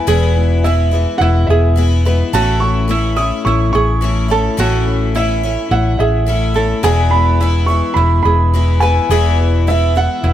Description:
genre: indie folk with a building arrangement.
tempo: 106 BPM.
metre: 4/4.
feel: straight.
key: E major.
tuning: A4 = 442 Hz.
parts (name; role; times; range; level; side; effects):
dark upright piano; melody; 0.0-10.3 s; E5 to D#6; -19 LUFS; right 3 dB; digital delay.
picked twelve-string acoustic guitar; accompaniment; 0.0-10.3 s; E2 to E4; -21 LUFS; left 5 dB; none.
warm upright piano; accompaniment; 0.0-10.3 s; A1 to F#5; -25 LUFS; left 7 dB; none.
ukulele; arpeggios; 0.0-10.3 s; E4 to B4; -21 LUFS; right 4 dB; none.
hollow-body short-scale fingered electric bass; bass; 0.1-10.3 s; E1 to A1; -14 LUFS; equal; none.
room: light reverb.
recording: none.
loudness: -12 LUFS.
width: side -11 dB against mid.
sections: 0.0-10.3 A section.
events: none.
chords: 0.0 E; 2.3 A; 6.9 E.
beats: | 0.08 0.65 1.21 1.78 | 2.34 2.91 3.47 4.04 | 4.60 5.16 5.73 6.29 | 6.85 7.42 7.98 8.54 | 9.11 9.67 10.23.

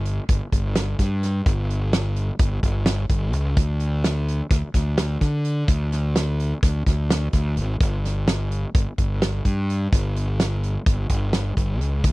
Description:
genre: math rock and midwest emo.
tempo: 255 BPM (eighths).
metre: 9/8.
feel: straight.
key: unclear.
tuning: A4 = 440 Hz.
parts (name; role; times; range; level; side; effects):
fuzz fingered electric bass; bass; 0.0-12.1 s; G1 to D3; -22 LUFS; equal; overdrive.
loose indie drum kit; drums; 0.1-12.1 s; hi-hat, kick drum, snare drum; -21 LUFS; equal; none.
room: little or no reverb.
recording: dry, close 1970s-style studio recording.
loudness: -20 LUFS.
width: side -21 dB against mid.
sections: 0.0-12.1 A section.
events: none.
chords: none.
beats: 0.06 0.29 0.53 0.76 0.99 1.23 | 1.46 1.70 1.93 2.17 2.40 2.63 2.87 3.10 3.34 | 3.57 3.81 4.04 4.28 4.51 4.75 4.98 5.22 5.45 | 5.69 5.92 6.16 6.39 6.63 6.86 7.10 7.33 7.57 | 7.80 8.04 8.27 8.51 8.74 8.98 9.21 9.45 9.69 | 9.92 10.16 10.39 10.63 10.87 11.10 11.34 11.57 11.81 | 12.04.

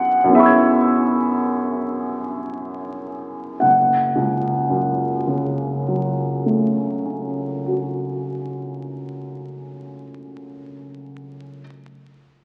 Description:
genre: classical, impressionist solo piano.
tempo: 31-46 BPM.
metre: 4/4.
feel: rubato.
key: F# minor.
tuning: A4 = 440 Hz.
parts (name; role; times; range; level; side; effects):
clear baby grand piano; solo; 0.0-11.6 s; F#1 to G#6; -21 LUFS; equal; none.
room: wet recital hall reverb, RT60 1.7 s.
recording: very old 78 rpm record, vinyl crackle.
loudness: -20 LUFS.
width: mono.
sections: 0.0-3.6 A section; 3.6-9.4 B section.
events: slowing down 0.0-3.6.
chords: 0.0 C#m7/F#; 3.6 F#m.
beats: 0.36 1.86 | 3.60 5.08 6.54 7.97.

